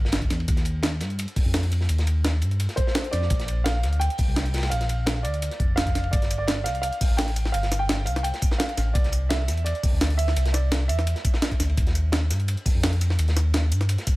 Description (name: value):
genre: liquid drum and bass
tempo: 170 BPM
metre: 4/4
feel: straight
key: unclear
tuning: A4 = 440 Hz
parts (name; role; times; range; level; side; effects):
- smooth synth bass; bass; 0.0-14.0 s; F1 to G2; -23 LUFS; equal; none
- crunchy breakbeat drum kit; drums; 0.0-14.2 s; hi-hat, ride cymbal, snare drum; -34 LUFS; equal; high-pass filter on cymbals, high-pass filter on hats, high-pass filter on snare, high-pass filter on room
- breakbeat sampler-style drum kit; drums; 0.1-14.1 s; hi-hat, snare drum, tambourine; -28 LUFS; right 1 dB; none
- electronic kick drum; drums; 0.2-14.1 s; none; -24 LUFS; equal; none
- dark baby grand piano; melody; 2.8-11.6 s; C5 to G5; -30 LUFS; right 2 dB; digital delay
room: little or no reverb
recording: none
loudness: -21 LUFS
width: side -19 dB against mid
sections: 0.0-14.2 A section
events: none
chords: 0.5 Ebadd9; 3.3 Bb; 6.1 Gsus2; 9.0 Cadd9; 11.8 Ebadd9